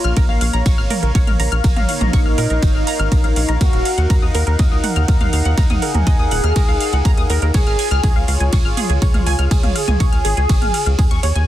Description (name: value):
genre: melodic techno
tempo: 122 BPM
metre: 4/4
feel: straight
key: unclear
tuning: A4 = 441 Hz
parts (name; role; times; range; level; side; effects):
- expressive synth lead; melody; 0.0-11.4 s; Eb4 to Ab4; -24 LUFS; equal; wide subtle chorus, vintage 12-bit sampler grit, sidechain pumping, digital delay
- warm analog pad; sustained chords; 0.0-11.4 s; Bb3 to Gb5; -26 LUFS; left 1 dB; chorus, sidechain pumping
- tight sequenced synth; arpeggios; 0.0-11.4 s; Ab4 to F6; -25 LUFS; equal; chorus, sidechain pumping, digital delay
- tight sequencer bass; bass; 0.0-11.4 s; Eb1 to Bb2; -18 LUFS; equal; sidechain pumping
- house drum kit; drums; 0.0-11.5 s; hi-hat, ride cymbal, toms; -25 LUFS; right 3 dB; none
- electronic kick drum; drums; 0.2-11.1 s; none; -16 LUFS; equal; none
room: little or no reverb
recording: dense, heavily limited modern master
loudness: -14 LUFS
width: side -13 dB against mid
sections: 0.0-11.5 A section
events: drop 0.0-11.5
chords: 0.0 Bbm; 3.6 Ebmadd9; 7.5 Db